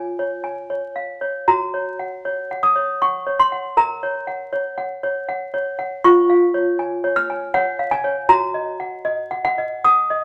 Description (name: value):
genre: classical, lullaby for toy piano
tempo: 79 BPM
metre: 3/4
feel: straight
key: unclear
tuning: A4 = 440 Hz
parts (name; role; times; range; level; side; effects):
- toy piano; solo; 0.0-10.2 s; F4 to F6; -20 LUFS; equal; none
room: wet large studio reverb, RT60 1.0 s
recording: vinyl crackle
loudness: -20 LUFS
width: mono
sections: 0.0-10.2 A section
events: none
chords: 0.0 Db; 1.5 Gb; 3.8 Gb/Bb; 6.0 Db/F; 8.3 Ebm/Gb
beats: 0.70 | 1.48 2.25 3.02 | 3.77 4.53 5.28 | 6.04 6.79 7.54 | 8.29 9.05 9.84